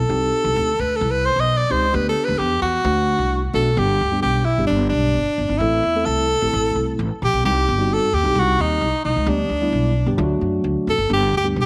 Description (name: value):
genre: uptempo 1960s-style soul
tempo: 131 BPM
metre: 4/4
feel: straight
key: G major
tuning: A4 = 440 Hz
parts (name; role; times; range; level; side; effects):
- clear tenor saxophone; melody; 0.0-11.7 s; D4 to Eb5; -22 LUFS; equal; none
- upright bass; bass; 0.0-11.7 s; F1 to F#2; -24 LUFS; equal; none
- mellow tine electric piano; accompaniment; 0.1-11.7 s; F#3 to A4; -27 LUFS; equal; none
room: light reverb, small room ambience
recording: vinyl crackle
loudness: -19 LUFS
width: mono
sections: 0.0-3.8 A section; 3.8-11.7 B section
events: none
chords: 0.1 Cm; 1.9 G/D; 2.8 D; 3.8 G; 5.6 Am; 7.4 Cm; 9.3 G/D; 10.2 D; 11.1 G